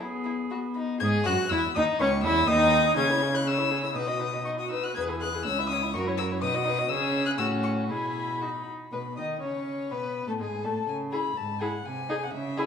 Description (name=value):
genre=quick classical-period movement for string quartet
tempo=123 BPM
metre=2/4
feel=rubato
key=unclear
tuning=A4 = 440 Hz
part: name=warm violin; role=melody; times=0.0-12.7 s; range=E5 to G#6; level=-31 LUFS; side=left 7 dB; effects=none
part: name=rich violin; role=second line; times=0.0-12.7 s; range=C#4 to E5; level=-30 LUFS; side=left 3 dB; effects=none
part: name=rich viola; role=accompaniment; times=0.0-12.7 s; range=G#3 to G#4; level=-31 LUFS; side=right 1 dB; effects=none
part: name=dark cello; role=bass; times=0.0-12.7 s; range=C#2 to G#4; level=-31 LUFS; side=right 2 dB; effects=none
room=wet recital hall reverb, RT60 1.6 s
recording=small room ambience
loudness=-25 LUFS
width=side -7 dB against mid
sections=0.0-1.0 A section; 1.0-8.9 B section; 8.9-12.7 C section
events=none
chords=0.0 E/B (rootless); 0.5 B; 1.0 F#sus2; 1.5 N.C.; 2.0 C#m; 2.5 N.C.; 3.0 C#m; 4.0 B; 5.0 E; 5.5 C#m; 5.9 F#7; 6.4 B; 6.9 C#m; 7.4 F#m/A; 7.9 E/B; 8.4 B; 8.9 Badd9; 9.9 Asus2; 10.4 N.C.; 10.9 C#m; 11.9 G#/B#